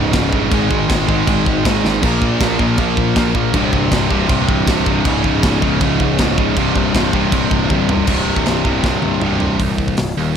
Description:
heavy metal; 159 BPM; 4/4; straight; C phrygian; A4 = 440 Hz
overdriven electric guitar; riff; 0.0-9.6 s; C2 to Bb3; -20 LUFS; equal
sludgy distorted guitar; riff; 0.0-10.4 s; C2 to Bb3; -21 LUFS; left 10 dB; overdrive
tight distorted guitar; riff; 0.0-10.4 s; C2 to Bb3; -20 LUFS; right 12 dB; distortion
fuzz picked electric bass; bass; 0.0-10.4 s; C1 to Bb1; -21 LUFS; equal; overdrive
tight metal drum kit; drums; 0.1-10.1 s; crash cymbal, hi-hat, kick drum, snare drum, splash cymbal, toms; -19 LUFS; equal
small room ambience; -13 LUFS; side -8 dB against mid
0.0-8.1 A section; 8.1-9.6 B section
drum fill 1.8, 7.7-8.1, 8.8-9.6
0.0 Db5; 0.5 Ab5; 2.0 Bb5; 3.5 C5; 5.1 Db5; 6.6 C5; 9.6 Cm
0.14 | 0.52 0.89 1.27 1.65 | 2.03 2.41 2.79 3.16 | 3.54 3.92 4.30 4.68 | 5.05 5.43 5.81 6.19 | 6.57 6.95 7.32 7.70 | 8.08 8.46 8.84 9.22 | 9.60 9.98 10.36

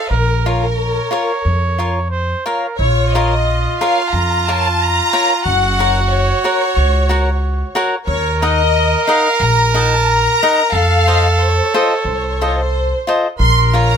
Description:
mexican folk, mariachi; 90 BPM; 4/4; straight; Bb harmonic minor; A4 = 440 Hz
rich studio violin section; melody; 0.0-14.0 s; Bb4 to C6; -17 LUFS; left 2 dB
clear trumpet; second line; 0.0-14.0 s; F4 to Db5; -19 LUFS; right 4 dB
upright bass; bass; 0.1-14.0 s; Gb1 to F2; -16 LUFS; equal
cavaquinho; accompaniment; 0.5-13.9 s; Eb4 to Gb5; -18 LUFS; left 2 dB
light reverb; close, detailed microphones; -13 LUFS; side -7 dB against mid
0.0-2.8 A section; 2.8-14.0 A section
0.1 Bbm; 5.4 Gb; 8.1 Ebm; 10.7 F7; 13.4 Bbm
| 0.10 0.77 1.44 2.12 | 2.79 3.46 4.12 4.79 | 5.45 6.10 6.76 7.42 | 8.07 8.74 9.40 10.06 | 10.72 11.39 12.05 12.72 | 13.39

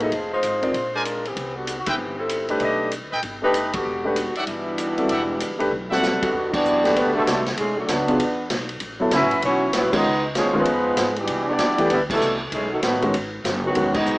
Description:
jazz, big band swing; 194 BPM; 4/4; swing 63% on 8ths; E minor; A4 = 443 Hz
mellow saxophone section; melody; 0.0-14.2 s; D3 to E5; -24 LUFS; equal
warm concert grand piano; accompaniment; 0.0-13.9 s; D#3 to D#5; -24 LUFS; equal
upright bass; bass; 0.0-14.2 s; E1 to G#2; -34 LUFS; equal
swinging big-band drum kit; drums; 0.0-14.1 s; crash cymbal, hi-hat, kick drum, ride cymbal, snare drum; -28 LUFS; equal
brilliant trumpet section; stabs; 0.9-6.3 s; G4 to G#5; -28 LUFS; equal
bright trombone section; second line; 4.4-14.2 s; G2 to F#4; -24 LUFS; right 1 dB
light reverb, small room ambience; rough home demo mix, small speaker sound; -19 LUFS; side -22 dB against mid
0.0-6.3 A section; 6.3-14.2 B section
band accent 1.8, 3.7, 6.2, 6.5, 9.9, 12.1, 13.9; drum fill 5.7-6.3
0.1 Fm7; 0.7 A#9; 1.4 Cmaj7; 2.6 B7alt; 3.9 Em9; 7.6 Bm9; 8.2 E5; 8.8 A69; 10.0 C#9; 11.3 Cmaj9; 12.5 B9
| 0.11 0.43 0.74 1.05 | 1.36 1.67 1.98 2.29 | 2.61 2.92 3.23 3.54 | 3.85 4.16 4.47 4.78 | 5.09 5.40 5.71 6.02 | 6.33 6.64 6.95 7.26 | 7.57 7.88 8.19 8.50 | 8.81 9.12 9.43 9.74 | 10.05 10.36 10.66 10.97 | 11.28 11.59 11.90 12.21 | 12.52 12.82 13.13 13.44 | 13.75 14.06

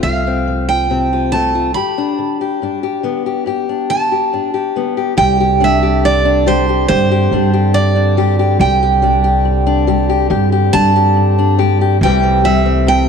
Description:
acoustic folk duo or small band; 70 BPM; 4/4; straight; C major; A4 = 438 Hz
picked steel-string acoustic guitar; melody; 0.0-13.1 s; C5 to B5; -16 LUFS; right 5 dB
fingerpicked steel-string acoustic guitar; accompaniment; 0.0-13.1 s; F2 to G4; -16 LUFS; left 8 dB
upright bass; bass; 0.0-13.1 s; C2 to G2; -15 LUFS; right 1 dB
pedal harmonium; sustained chords; 5.2-13.1 s; D3 to G4; -22 LUFS; right 10 dB
moderate echo chamber reverb, RT60 1.9 s; 1960s-style stereo with parts hard left and right; -12 LUFS; side -6 dB against mid
0.0-5.2 A section; 5.2-13.1 B section
break 1.7-5.2
0.0 F; 1.7 G; 5.2 Csus2; 12.0 Am7/C
0.03 0.89 | 1.75 2.60 3.46 4.32 | 5.17 6.03 6.88 7.74 | 8.59 9.45 10.30 11.16 | 12.01 12.87

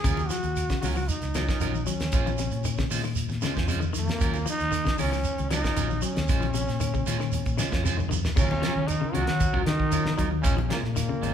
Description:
afrobeat; 115 BPM; 4/4; straight; Eb dorian; A4 = 436 Hz
growling trombone; melody; 0.0-11.3 s; Bb3 to Ab4; -31 LUFS; equal
clean electric guitar; arpeggios; 0.0-11.3 s; C3 to Gb3; -34 LUFS; left 5 dB; vibrato effect
electric guitar at the edge of break-up; stabs; 0.0-11.3 s; Gb3 to C5; -34 LUFS; right 4 dB
fingered electric bass; bass; 0.0-11.3 s; Ab1 to Eb3; -29 LUFS; equal
damped 70s drum kit; drums; 0.0-11.3 s; crash cymbal, hi-hat, kick drum, snare drum, toms; -29 LUFS; equal
claves; percussion; 0.0-11.1 s; -46 LUFS; left 1 dB
shekere; percussion; 0.1-11.3 s; -34 LUFS; right 4 dB
congas; percussion; 0.2-11.3 s; -35 LUFS; left 4 dB
breathy bass trombone; second line; 8.4-11.3 s; Bb2 to Gb3; -38 LUFS; left 2 dB
brilliant trombone; second line; 8.4-11.3 s; Bb2 to Gb3; -38 LUFS; right 3 dB
moderate large studio reverb, RT60 1.2 s; band playing live in one room; -24 LUFS; side -9 dB against mid
0.0-8.4 A section; 8.4-11.3 B section
drum fill 7.3-8.4
0.0 Ebm9; 2.1 Bbm9; 4.2 Ebm9; 6.3 Bbm9; 8.4 Ebm9; 10.5 Bbm9
| 0.05 0.57 1.09 1.61 | 2.13 2.65 3.17 3.69 | 4.21 4.73 5.25 5.77 | 6.29 6.81 7.33 7.85 | 8.37 8.89 9.41 9.93 | 10.45 10.97

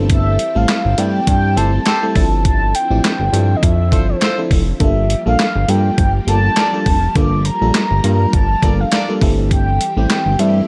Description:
early-eighties boogie funk; 102 BPM; 4/4; swing 56% on 16ths; G dorian; A4 = 440 Hz
FM electric piano; accompaniment; 0.0-10.7 s; F3 to Bb4; -24 LUFS; equal; chorus
string machine, violins; sustained chords; 0.0-10.7 s; D3 to Bb4; -30 LUFS; equal; ensemble chorus
fat analog bass; bass; 0.0-10.6 s; F1 to G2; -18 LUFS; equal
mellow horn-like synth lead; melody; 0.1-10.7 s; C5 to D6; -22 LUFS; equal; chorus
clean 12-bit digital drum machine; drums; 0.1-10.5 s; handclaps, hi-hat, kick drum, snare drum; -19 LUFS; equal
warm horn section; second line; 1.6-9.1 s; D4 to D5; -28 LUFS; equal
digital ambience; dark, warm production; -15 LUFS; mono
0.0-10.7 A section
0.0 Am7/G; 2.2 Dm9/G; 4.8 Gm9; 9.2 Am7/G
| 0.10 0.69 1.27 1.86 | 2.45 3.04 3.63 4.22 | 4.80 5.39 5.98 6.57 | 7.16 7.75 8.33 8.92 | 9.51 10.10

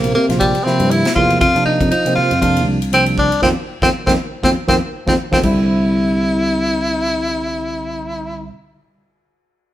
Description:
electric jazz fusion; 119 BPM; 4/4; swing 56% on 16ths; C mixolydian; A4 = 440 Hz
breathy tenor saxophone; melody; 0.0-8.5 s; G3 to F4; -17 LUFS; equal
barky tine electric piano; accompaniment; 0.0-8.5 s; C3 to F4; -20 LUFS; right 1 dB; overdrive
sustaining fretless electric bass; bass; 0.0-8.5 s; Bb1 to F3; -20 LUFS; equal
modern studio drum kit; drums; 0.0-5.6 s; crash cymbal, kick drum, ride cymbal, snare drum; -23 LUFS; equal
moderate stone room reverb, RT60 1.2 s; band playing live in one room; -13 LUFS; side -13 dB against mid
0.0-5.4 A section; 5.4-9.5 B section
band accent 3.4-5.4; drum fill 4.9-5.4
0.0 C7sus4; 1.4 F7sus4; 5.4 C
0.40 0.91 | 1.41 1.91 2.42 2.92 | 3.42 3.92 4.43 4.93 | 5.43 5.93 6.44 6.94 | 7.44 7.95 8.45

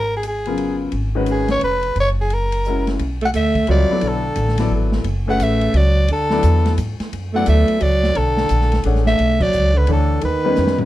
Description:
modal jazz; 174 BPM; 3/4; swing 64% on 8ths; B dorian; A4 = 440 Hz
growling soprano saxophone; melody; 0.0-10.9 s; G#4 to F#5; -20 LUFS; left 1 dB
upright bass; bass; 0.0-10.9 s; E#1 to G#2; -19 LUFS; equal
open jazz drum kit; drums; 0.2-10.9 s; crash cymbal, hi-hat, kick drum, ride cymbal, snare drum, toms; -29 LUFS; equal
clear concert grand piano; accompaniment; 0.5-10.9 s; C#3 to F#5; -22 LUFS; left 4 dB
breathy tenor saxophone; second line; 3.2-10.9 s; D3 to A3; -21 LUFS; right 4 dB
light reverb; dark, warm production; -15 LUFS; side -14 dB against mid
0.0-3.0 A section; 3.0-10.9 B section
band accent 9.4; drum fill 10.6
0.0 G#m9; 2.0 F#7; 3.0 Bm7; 10.2 D#7b13
0.24 0.58 | 0.93 1.27 1.62 | 1.96 2.31 2.65 | 3.00 3.34 3.69 | 4.03 4.37 4.72 | 5.06 5.41 5.75 | 6.09 6.44 6.78 | 7.13 7.47 7.82 | 8.16 8.51 8.85 | 9.20 9.54 9.88 | 10.23 10.57

